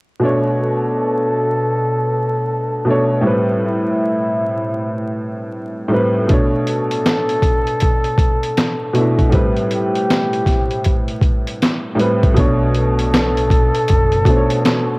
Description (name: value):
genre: lo-fi hip hop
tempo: 79 BPM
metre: 4/4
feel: swing 64% on 16ths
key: B minor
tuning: A4 = 440 Hz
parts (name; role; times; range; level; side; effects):
- warm upright piano; accompaniment; 0.2-15.0 s; A2 to C#5; -18 LUFS; equal; cassette tape, low-pass filter
- breathy flugelhorn; melody; 0.6-15.0 s; E4 to A4; -20 LUFS; equal; low-pass filter
- dusty soul sampler-style drum kit; drums; 6.3-14.9 s; handclaps, hi-hat, kick drum, snare drum; -16 LUFS; equal; none
- deep dub fingered electric bass; bass; 12.4-14.2 s; F#1 to B1; -19 LUFS; equal; none
room: light reverb, small room ambience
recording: home recording on cassette, vinyl crackle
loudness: -14 LUFS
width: side -26 dB against mid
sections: 0.2-12.4 A section; 12.4-15.0 B section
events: none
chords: 0.2 Bm9; 3.3 Am9; 6.3 Bm9; 9.3 Am9; 12.4 Bm9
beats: | 0.22 0.98 1.74 2.50 | 3.26 4.02 4.78 5.54 | 6.29 7.05 7.81 8.57 | 9.33 10.09 10.85 11.61 | 12.37 13.13 13.89 14.65